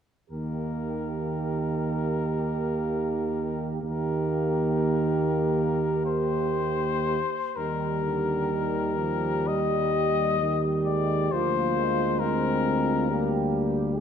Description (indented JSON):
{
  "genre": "classical, hymn-like piece for brass band",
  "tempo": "56-70 BPM",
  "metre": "4/4",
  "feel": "rubato",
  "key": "Eb major",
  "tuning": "A4 = 440 Hz",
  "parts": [
    { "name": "warm cornet", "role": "melody", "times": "0.3-13.5 s", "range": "Bb4 to Eb5", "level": "-30 LUFS", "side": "left 8 dB", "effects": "none" },
    { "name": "warm French horn section", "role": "second line", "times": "0.3-14.0 s", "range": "F4 to Ab4", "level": "-29 LUFS", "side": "right 4 dB", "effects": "none" },
    { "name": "bright trombone", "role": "accompaniment", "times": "0.3-14.0 s", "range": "D3 to Ab3", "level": "-33 LUFS", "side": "right 4 dB", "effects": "none" },
    { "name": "mellow trombone section", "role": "accompaniment", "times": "0.3-14.0 s", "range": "G3 to C4", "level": "-33 LUFS", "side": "left 3 dB", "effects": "none" },
    { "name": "mellow tuba", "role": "bass", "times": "0.3-14.0 s", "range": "D2 to Eb2", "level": "-30 LUFS", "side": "equal", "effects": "none" }
  ],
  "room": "wet concert hall reverb, RT60 1.9 s",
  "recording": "none",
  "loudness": "-24 LUFS",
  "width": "side -8 dB against mid",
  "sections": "0.3-7.6 A section; 7.6-14.0 B section",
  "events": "none",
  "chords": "0.3 Eb; 11.3 Bb7/D",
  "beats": "| 0.31 1.21 2.09 2.96 | 3.83 4.69 5.60 6.55 | 7.57 8.49 9.48 10.40 | 11.32 12.21 13.09 13.96"
}